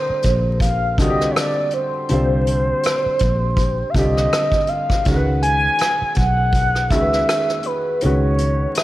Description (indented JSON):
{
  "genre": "R&B, neo-soul",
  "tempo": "81 BPM",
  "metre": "4/4",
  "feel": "swing 54% on 16ths",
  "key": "unclear",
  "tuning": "A4 = 440 Hz",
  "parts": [
    { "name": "mellow horn-like synth lead", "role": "melody", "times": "0.0-8.8 s", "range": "B4 to G#5", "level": "-20 LUFS", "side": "equal", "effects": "chorus, phaser" },
    { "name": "clear concert grand piano", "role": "accompaniment", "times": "0.0-8.8 s", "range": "D3 to C5", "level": "-24 LUFS", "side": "equal", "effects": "none" },
    { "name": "vintage muted fingered electric bass", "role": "bass", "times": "0.1-8.6 s", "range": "Bb1 to C#2", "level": "-20 LUFS", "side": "equal", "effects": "none" },
    { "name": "vintage brush drum kit", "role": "drums", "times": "0.2-8.8 s", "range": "hi-hat, kick drum, rim click", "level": "-22 LUFS", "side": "equal", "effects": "none" }
  ],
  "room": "light reverb, small room ambience",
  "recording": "vinyl crackle",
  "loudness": "-16 LUFS",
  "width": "side -16 dB against mid",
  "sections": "0.0-8.8 A section",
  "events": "none",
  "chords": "0.0 Cm9; 5.1 C#m9"
}